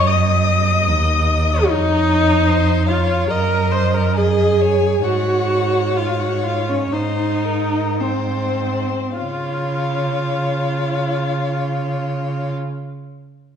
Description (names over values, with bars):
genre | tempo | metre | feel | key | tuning
classical, slow romantic movement for string quartet | 47-76 BPM | 4/4 | rubato | Db major | A4 = 441 Hz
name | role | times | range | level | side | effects
rich violin | melody | 0.0-12.5 s | C5 to Eb6 | -26 LUFS | left 11 dB | none
rich violin | second line | 0.0-12.5 s | Bb4 to Eb5 | -26 LUFS | left 5 dB | none
rich viola | accompaniment | 0.0-12.5 s | C4 to Eb5 | -20 LUFS | equal | none
rich cello | bass | 0.0-12.5 s | Eb2 to Db3 | -20 LUFS | right 3 dB | none
room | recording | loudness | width
wet recital hall reverb, RT60 1.3 s | dark, warm production | -16 LUFS | side -8 dB against mid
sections
0.0-9.2 A section; 9.2-13.6 B section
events
slowing down 0.1-9.2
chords
0.0 Ebm/Gb; 1.6 Db/F; 3.3 Ebm/Gb; 5.0 Ab7sus4; 6.9 Ab; 9.2 Db